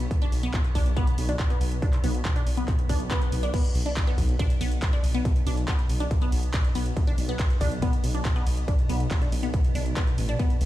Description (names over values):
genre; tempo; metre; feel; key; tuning
driving peak-time techno; 140 BPM; 4/4; straight; B minor; A4 = 439 Hz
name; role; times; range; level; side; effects
dark detuned saw bass; bass; 0.0-10.7 s; A1 to B1; -27 LUFS; equal; tube saturation, sidechain pumping
swarming drone; drone; 0.0-10.7 s; B2; -35 LUFS; equal; built-in reverb, sidechain pumping
punchy analog drum machine; drums; 0.0-10.7 s; crash cymbal, handclaps, hi-hat, ride cymbal; -36 LUFS; equal; sidechain pumping on hats, sidechain pumping on cymbals
electronic kick drum; drums; 0.1-10.5 s; none; -24 LUFS; equal; distortion, overdrive
resonant blip pluck; riff; 0.2-10.5 s; B3 to D4; -33 LUFS; left 1 dB; phaser, cassette tape, sidechain pumping, dub echo
swell; sound effects; 2.8-3.5 s; none; -38 LUFS; equal; none
room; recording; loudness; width
digital ambience; played on a big sound system in a bare room, stone room reverb; -22 LUFS; side -14 dB against mid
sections
0.0-10.7 A section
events
swell 2.8-3.5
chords
0.0 Bm